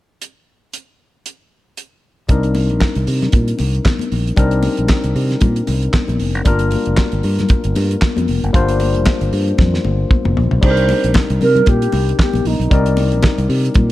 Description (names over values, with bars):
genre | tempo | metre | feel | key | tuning
disco | 115 BPM | 4/4 | swing 56% on 16ths | C minor | A4 = 441 Hz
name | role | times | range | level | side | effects
damped 70s drum kit | drums | 0.2-13.9 s | crash cymbal, handclaps, hi-hat, kick drum, snare drum, toms | -17 LUFS | equal | none
barky tine electric piano | accompaniment | 2.3-13.9 s | G3 to D5 | -20 LUFS | left 4 dB | overdrive
fingered electric bass | bass | 2.3-13.9 s | F1 to C3 | -17 LUFS | equal | none
congas | percussion | 2.3-13.9 s | none | -24 LUFS | left 4 dB | none
mellow hollow wooden-headed alto flute | melody | 10.6-13.2 s | Eb4 to C5 | -18 LUFS | right 4 dB | none
room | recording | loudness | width
studio ambience | dark, warm production | -13 LUFS | side -16 dB against mid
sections
0.2-2.3 A section; 2.3-10.6 B section; 10.6-13.9 C section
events
drum fill 9.6-10.6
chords
0.2 N.C.; 2.3 Cm9; 6.5 Gm7; 10.6 Cm9